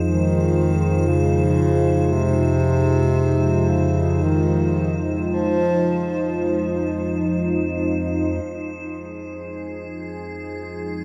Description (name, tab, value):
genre	dark ambient drone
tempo	free time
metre	none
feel	none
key	F minor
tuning	A4 = 441 Hz
part	mellow bass clarinet	melody	0.0-6.3 s	C3 to F3	-24 LUFS	equal	shimmer reverb, delay
part	sweeping resonant pad	sustained chords	0.0-11.0 s	F3 to Eb4	-26 LUFS	equal	chorus, shimmer reverb
part	analog drone	drone	0.0-11.0 s	F2 to F3	-26 LUFS	equal	chorus
part	icy glass pad	texture	0.0-11.0 s	Ab4 to C5	-33 LUFS	equal	chorus, built-in reverb, shimmer reverb
room	wet huge ambient reverb, RT60 7.4 s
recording	none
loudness	-20 LUFS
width	mono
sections	0.0-8.5 A section; 8.5-11.0 B section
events	filter sweep on synth drone 0.0-8.5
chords	0.0 Fm